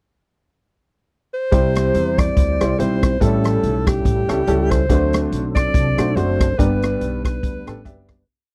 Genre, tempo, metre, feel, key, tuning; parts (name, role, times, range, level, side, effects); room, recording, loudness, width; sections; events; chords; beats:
uptempo gospel; 142 BPM; 4/4; swing 56% on 8ths; C major; A4 = 440 Hz
warm alto saxophone; melody; 1.3-8.1 s; G4 to D5; -25 LUFS; equal
clear upright piano; accompaniment; 1.5-8.1 s; G2 to E5; -24 LUFS; equal
tonewheel organ; sustained chords; 1.5-8.3 s; F#3 to C5; -27 LUFS; equal; slow rotary speaker, overdrive, chorus vibrato
upright bass; bass; 1.5-8.2 s; F#1 to E2; -24 LUFS; equal
swinging big-band drum kit; drums; 1.5-8.2 s; hi-hat, kick drum, rim click; -22 LUFS; equal
light reverb; dry, close 1970s-style studio recording; -18 LUFS; mono
0.0-1.5 pickup bar; 1.5-8.3 breakdown
fade-out 6.6-8.3
0.0 N.C.; 1.5 C; 3.2 A7; 4.9 D7; 6.6 G
0.25 0.68 1.10 | 1.52 1.95 2.37 2.79 | 3.21 3.63 4.05 4.48 | 4.90 5.32 5.74 6.16 | 6.59 7.01 7.43 7.86